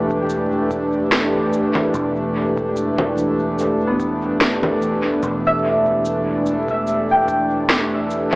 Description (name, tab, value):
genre	ambient dub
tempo	73 BPM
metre	4/4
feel	swing 54% on 16ths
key	E minor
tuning	A4 = 441 Hz
part	airy breathy pad	sustained chords	0.0-8.4 s	E3 to B4	-19 LUFS	equal	chorus
part	concert harp	arpeggios	0.0-8.4 s	B3 to G5	-21 LUFS	equal	dub echo
part	fingered electric bass	bass	0.0-8.4 s	E1	-30 LUFS	equal	none
part	electronic kick drum	drums	0.1-7.5 s	none	-41 LUFS	equal	none
part	electronic cabasa, snare drum and congas	drums	0.3-8.4 s	none	-20 LUFS	equal	dub echo
room	wet spring reverb, RT60 2.7 s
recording	vinyl crackle, AM radio sound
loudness	-16 LUFS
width	side -23 dB against mid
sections	0.0-8.4 A section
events	none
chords	0.0 Em7